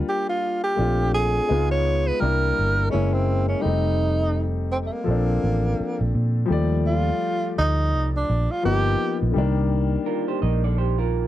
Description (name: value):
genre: R&B, neo-soul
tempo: 84 BPM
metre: 4/4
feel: swing 61% on 16ths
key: unclear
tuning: A4 = 441 Hz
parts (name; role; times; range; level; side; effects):
- warm concert grand piano; accompaniment; 0.0-11.3 s; Db3 to D5; -26 LUFS; left 6 dB; none
- breathy tenor saxophone; melody; 0.1-9.2 s; A3 to Db5; -24 LUFS; right 2 dB; slapback echo
- vintage muted fingered electric bass; bass; 0.8-11.3 s; F1 to Bb2; -22 LUFS; right 1 dB; none
- electric guitar through a small old amp; second line; 10.1-11.3 s; F4 to Eb5; -26 LUFS; right 12 dB; none
room: little or no reverb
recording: dry, close 1970s-style studio recording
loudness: -20 LUFS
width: side -13 dB against mid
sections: 0.0-6.5 A section; 6.5-11.3 B section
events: none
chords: 0.0 Ebmaj9 (rootless); 0.8 Bbmaj9; 1.5 Db9; 2.2 C7; 2.9 Gb9; 3.6 F9; 5.1 Bbmaj9; 6.5 Ebmaj9#11; 8.6 G7alt; 9.3 Cm7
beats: 0.06 | 0.77 1.48 2.20 2.91 | 3.63 4.34 5.06 5.77 | 6.48 7.20 7.91 8.63 | 9.34 10.06 10.77